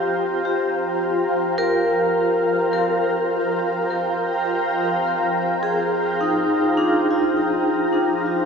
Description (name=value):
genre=ambient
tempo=52 BPM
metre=4/4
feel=straight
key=unclear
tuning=A4 = 440 Hz
part: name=granular cloud pad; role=sustained chords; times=0.0-8.5 s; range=F4 to Bb5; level=-20 LUFS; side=right 1 dB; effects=built-in reverb
part: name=vibraphone with medium hard mallets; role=arpeggios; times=0.0-8.5 s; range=D4 to Bb4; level=-22 LUFS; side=left 1 dB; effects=ping-pong delay
part: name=twinkling granular texture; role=texture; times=6.9-8.5 s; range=Eb4 to Eb6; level=-41 LUFS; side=right 2 dB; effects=none
room=wet cathedral reverb, RT60 5.1 s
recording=in a vast, echoing space, nothing above 8.0 kHz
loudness=-18 LUFS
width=side -6 dB against mid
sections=0.0-6.2 A section; 6.2-8.5 B section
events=none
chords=0.0 F9sus4; 6.2 Fm11